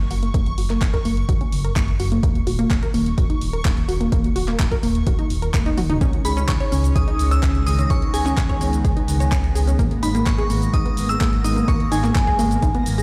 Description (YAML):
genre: progressive house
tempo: 127 BPM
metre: 4/4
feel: straight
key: unclear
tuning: A4 = 440 Hz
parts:
  - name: dark detuned saw bass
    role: bass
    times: 0.0-13.0 s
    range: D#1 to C#2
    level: -25 LUFS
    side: equal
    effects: sidechain pumping
  - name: backwards swelling texture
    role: texture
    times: 0.0-13.0 s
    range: C#6 to A#6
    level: -42 LUFS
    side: equal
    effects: built-in reverb, sidechain pumping
  - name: unison pluck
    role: arpeggios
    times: 0.1-13.0 s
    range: A#3 to C#5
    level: -27 LUFS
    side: equal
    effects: sidechain pumping, delay
  - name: deep house drum kit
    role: drums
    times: 0.1-13.0 s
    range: handclaps, hi-hat, shaker, toms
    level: -33 LUFS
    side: equal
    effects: studio reverb
  - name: electronic kick drum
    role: drums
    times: 0.3-12.7 s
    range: none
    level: -23 LUFS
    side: equal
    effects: studio reverb
  - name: lush unison pad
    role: sustained chords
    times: 6.0-13.0 s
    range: D#3 to C#4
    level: -30 LUFS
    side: equal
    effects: chorus, sidechain pumping
  - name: glassy synth bell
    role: melody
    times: 6.2-13.0 s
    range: G#5 to E6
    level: -29 LUFS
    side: equal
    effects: chorus, phaser, sidechain pumping, digital delay
room: light reverb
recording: played on a big sound system in a bare room, stone room reverb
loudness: -20 LUFS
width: mono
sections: 0.0-13.0 A section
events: filter sweep on synth pluck 0.0-13.0; drum fill 5.5-6.0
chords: 0.0 F#; 2.2 D#5; 6.0 C#sus2; 9.8 G#madd9